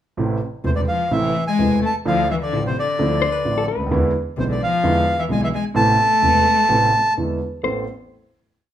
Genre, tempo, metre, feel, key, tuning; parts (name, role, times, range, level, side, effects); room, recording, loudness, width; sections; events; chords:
tango; 129 BPM; 4/4; rubato; A harmonic minor; A4 = 439 Hz
warm concert grand piano; accompaniment; 0.2-7.8 s; E1 to A4; -21 LUFS; right 2 dB
rich cello; second line; 0.6-7.1 s; C3 to A3; -24 LUFS; left 6 dB
bandoneon; melody; 0.7-7.1 s; C5 to A5; -19 LUFS; right 1 dB
hollow-body jazz guitar; second line; 3.2-4.2, 7.6-7.9 s; A4 to C5; -24 LUFS; left 6 dB
moderate large studio reverb, RT60 0.8 s; minimal, uncompressed stereo recording; -16 LUFS; side -11 dB against mid
0.2-7.7 A section; 7.7-8.7 final chord
0.2 Am; 2.1 Dmadd9; 3.9 E7; 5.8 Amadd9; 7.2 E7; 7.7 Amadd9